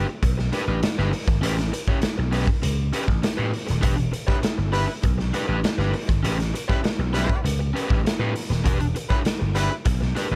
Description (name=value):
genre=funk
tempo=100 BPM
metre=4/4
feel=straight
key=E dorian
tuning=A4 = 440 Hz
part: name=crunchy overdriven guitar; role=accompaniment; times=0.0-10.4 s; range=C#4 to C#5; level=-31 LUFS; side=equal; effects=none
part: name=vintage slap bass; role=bass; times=0.0-10.4 s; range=D#1 to A2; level=-26 LUFS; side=equal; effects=none
part: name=raw garage drum kit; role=drums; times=0.2-10.3 s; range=hi-hat, kick drum, snare drum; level=-26 LUFS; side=equal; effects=none
part: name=clear horn section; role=second line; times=4.3-9.7 s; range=G3 to B4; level=-30 LUFS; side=equal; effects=none
room=little or no reverb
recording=none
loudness=-23 LUFS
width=mono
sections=0.0-10.4 A section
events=none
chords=0.0 Em7 (rootless); 1.4 A9; 3.8 Em7 (rootless); 6.2 A9; 8.6 Em7